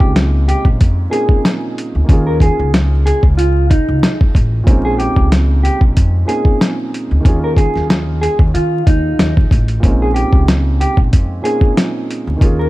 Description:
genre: hip hop, boom-bap hip-hop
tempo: 93 BPM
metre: 4/4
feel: swing 55% on 16ths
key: Bb minor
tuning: A4 = 440 Hz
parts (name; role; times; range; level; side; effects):
- mellow electric guitar; melody; 0.0-12.7 s; Eb4 to Bb4; -19 LUFS; equal; high-pass filter, low-pass filter, digital delay
- dark grand piano; accompaniment; 0.0-12.7 s; Bb2 to Ab4; -21 LUFS; right 2 dB; cassette tape, high-pass filter, low-pass filter
- upright bass; bass; 0.0-12.7 s; A1 to Eb3; -15 LUFS; equal; none
- dusty soul sampler-style drum kit; drums; 0.0-12.6 s; hi-hat, kick drum, snare drum; -12 LUFS; equal; overdrive
room: little or no reverb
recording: dark, warm production, vinyl crackle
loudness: -11 LUFS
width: side -18 dB against mid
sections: 0.0-12.7 A section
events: none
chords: 0.0 Bbm11; 2.1 Eb7sus4; 4.7 Bbm11; 7.3 Eb7sus4; 9.8 Bbm11

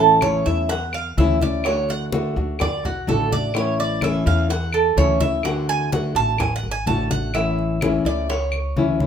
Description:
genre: latin, Cuban son and guajira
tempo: 126 BPM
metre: 4/4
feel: straight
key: A major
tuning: A4 = 441 Hz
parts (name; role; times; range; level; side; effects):
- nylon-string guitar; accompaniment; 0.0-9.1 s; D3 to F#4; -23 LUFS; left 4 dB; none
- Cuban tres; arpeggios; 0.0-9.1 s; F#4 to A5; -22 LUFS; right 5 dB; none
- upright bass; bass; 0.0-9.1 s; G#1 to E2; -25 LUFS; equal; none
- bongos; percussion; 0.2-9.1 s; none; -30 LUFS; left 4 dB; none
- claves; percussion; 0.2-8.8 s; none; -32 LUFS; left 2 dB; none
- congas; percussion; 0.2-9.1 s; none; -27 LUFS; left 2 dB; none
room: moderate large studio reverb, RT60 0.9 s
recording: minimal, uncompressed stereo recording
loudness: -18 LUFS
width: side -8 dB against mid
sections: 0.0-9.1 A section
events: Cuban tres solo 0.0-9.1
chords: 0.0 A; 1.7 D; 3.5 A; 5.4 D; 7.3 A

